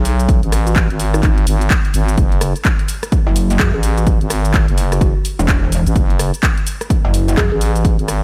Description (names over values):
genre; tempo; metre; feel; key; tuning
bass house; 127 BPM; 4/4; swing 61% on 16ths; unclear; A4 = 440 Hz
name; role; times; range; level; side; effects
growling FM bass; bass; 0.0-8.2 s; F#1 to B1; -18 LUFS; equal; overdrive, sidechain pumping
house drum kit; drums; 0.1-8.2 s; handclaps, hi-hat, rim click, shaker; -25 LUFS; equal; none
electronic kick drum; drums; 0.3-8.0 s; none; -18 LUFS; equal; overdrive
mallet-like synth pluck; melody; 0.7-7.6 s; D#4 to G#4; -29 LUFS; equal; chorus, phaser, tape echo
pulsing pluck wobble bass; bass; 3.3-7.5 s; E1 to F#2; -18 LUFS; equal; chorus, overdrive, sidechain pumping
room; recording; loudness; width
little or no reverb; none; -15 LUFS; mono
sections
0.0-8.2 A section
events
none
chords
0.0 G#m; 2.2 F#m